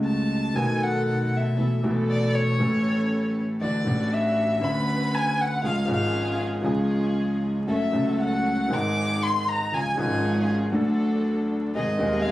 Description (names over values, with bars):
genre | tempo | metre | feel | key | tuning
tango | 118 BPM | 4/4 | rubato | unclear | A4 = 440 Hz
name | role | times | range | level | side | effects
warm violin | second line | 0.0-12.3 s | C#5 to D6 | -27 LUFS | left 1 dB | none
warm concert grand piano | accompaniment | 0.0-12.3 s | D#1 to A4 | -24 LUFS | equal | none
dark chamber string section | stabs | 0.0-12.3 s | G#3 to B4 | -32 LUFS | right 2 dB | none
upright bass | bass | 0.0-12.3 s | F#1 to D#2 | -32 LUFS | right 1 dB | none
room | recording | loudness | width
moderate club reverb, RT60 0.5 s | recorded on a phone in the room, club ambience, vinyl crackle, compression | -22 LUFS | side -15 dB against mid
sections
0.0-12.3 A section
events
violin solo 0.0-12.3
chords
0.0 F#madd9; 0.6 B7; 1.6 Esus4/B; 2.6 A; 3.6 Dadd9; 4.6 Bmadd9/D; 5.6 C#; 7.7 F#m; 8.7 G#; 9.7 C#; 10.7 D; 11.7 G#